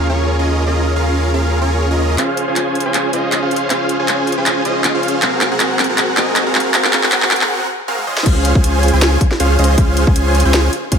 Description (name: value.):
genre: future bass.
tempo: 158 BPM.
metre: 4/4.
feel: swing 55% on 16ths, half-time.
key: Db major.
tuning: A4 = 441 Hz.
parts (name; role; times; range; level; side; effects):
dense compressed supersaw; riff; 0.0-11.0 s; C4 to Ab5; -16 LUFS; right 1 dB; sidechain pumping, low-pass filter, digital delay.
saturated sub bass; bass; 0.0-11.0 s; Ab1 to Eb2; -17 LUFS; equal; sidechain pumping, high-pass filter.
trap drum kit; drums; 2.2-11.0 s; crash cymbal, handclaps, hi-hat, snare drum, toms; -17 LUFS; equal; overdrive.
electronic kick drum; drums; 8.3-11.0 s; none; -13 LUFS; equal; overdrive.
room: moderate lush hall reverb, RT60 1.7 s, digital ambience.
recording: high-pass filter.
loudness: -12 LUFS.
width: side -7 dB against mid.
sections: 0.0-2.2 A section; 2.2-8.3 B section; 8.3-11.0 C section.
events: build-up 2.2-8.3; drum fill 2.2-7.5, 8.0; break 7.5-8.3; drop 8.3-11.0.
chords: 0.0 Eb9sus4; 2.2 Dbmaj7; 5.2 Ab13; 8.1 Dbmaj7.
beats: 0.28 | 0.67 1.04 1.42 1.80 | 2.18 2.56 2.94 3.32 | 3.70 4.08 4.46 4.84 | 5.22 5.60 5.98 6.36 | 6.74 7.12 7.50 7.88 | 8.26 8.64 9.02 9.40 | 9.78 10.16 10.54 10.92.